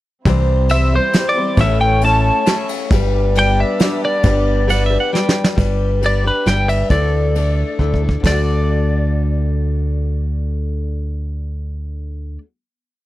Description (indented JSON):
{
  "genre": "folk rock and heartland rock",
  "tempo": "135 BPM",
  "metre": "3/4",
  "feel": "straight",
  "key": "D mixolydian",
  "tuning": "A4 = 440 Hz",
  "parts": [
    { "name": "picked steel-string acoustic guitar", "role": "accompaniment", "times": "0.3-12.5 s", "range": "A2 to C#5", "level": "-21 LUFS", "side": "left 4 dB", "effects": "none" },
    { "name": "dark chamber string section", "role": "sustained chords", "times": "0.3-5.5 s", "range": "G3 to D5", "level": "-26 LUFS", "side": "equal", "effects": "none" },
    { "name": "deep dub picked electric bass", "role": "bass", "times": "0.3-12.4 s", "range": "G1 to D2", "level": "-17 LUFS", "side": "equal", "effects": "none" },
    { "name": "soft brush drum kit", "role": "drums", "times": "0.3-8.4 s", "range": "crash cymbal, kick drum, ride cymbal, snare drum", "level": "-19 LUFS", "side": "right 1 dB", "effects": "none" },
    { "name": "twelve-string electric guitar", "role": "melody", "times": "0.7-12.4 s", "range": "B4 to A5", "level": "-19 LUFS", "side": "equal", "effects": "vibrato effect" },
    { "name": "pedal steel guitar", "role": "second line", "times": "4.7-5.5 s", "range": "E5 to G5", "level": "-21 LUFS", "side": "right 4 dB", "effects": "none" }
  ],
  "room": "little or no reverb",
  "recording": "dry, close 1970s-style studio recording",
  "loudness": "-14 LUFS",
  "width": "side -16 dB against mid",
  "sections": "0.3-5.6 pre-chorus; 5.6-8.2 outro; 8.2-10.9 final chord",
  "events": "drum fill 5.1-5.6, 7.8-8.2",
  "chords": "0.3 C; 1.6 A; 2.9 G; 6.9 Dsus2; 8.2 D",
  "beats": "| 0.27 0.71 1.15 | 1.59 2.03 2.47 | 2.92 3.36 3.80 | 4.24 4.68 5.13 | 5.57 6.01 6.46 | 6.90 7.35 7.79 | 8.24 8.68 9.13 | 9.57 10.02 10.46"
}